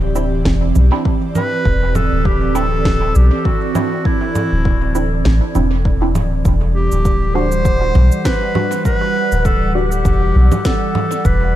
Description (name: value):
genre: ambient dub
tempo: 100 BPM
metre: 4/4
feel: swing 55% on 16ths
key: E minor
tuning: A4 = 440 Hz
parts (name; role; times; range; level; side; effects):
- airy breathy pad; sustained chords; 0.0-11.6 s; E3 to F#5; -22 LUFS; right 2 dB; chorus
- soft dub sub bass; bass; 0.0-11.6 s; D1 to B1; -15 LUFS; equal; none
- filtered dub chord stab; stabs; 0.2-10.6 s; G3 to F#4; -26 LUFS; right 2 dB; phaser, wide subtle chorus, dub echo
- electronic cabasa, snare drum and congas; drums; 0.2-11.4 s; none; -24 LUFS; right 2 dB; overdrive, dub echo
- electronic kick drum; drums; 0.5-11.4 s; none; -18 LUFS; equal; none
- warm clarinet; melody; 1.4-11.6 s; E4 to C5; -20 LUFS; equal; dub echo
room: little or no reverb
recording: echo-heavy mix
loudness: -13 LUFS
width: side -13 dB against mid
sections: 0.0-6.5 A section; 6.5-11.6 B section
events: none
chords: 0.0 Cadd9; 6.5 Em9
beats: 0.45 1.05 | 1.65 2.25 2.85 3.45 | 4.05 4.65 5.25 5.85 | 6.45 7.05 7.65 8.25 | 8.85 9.45 10.05 10.65 | 11.25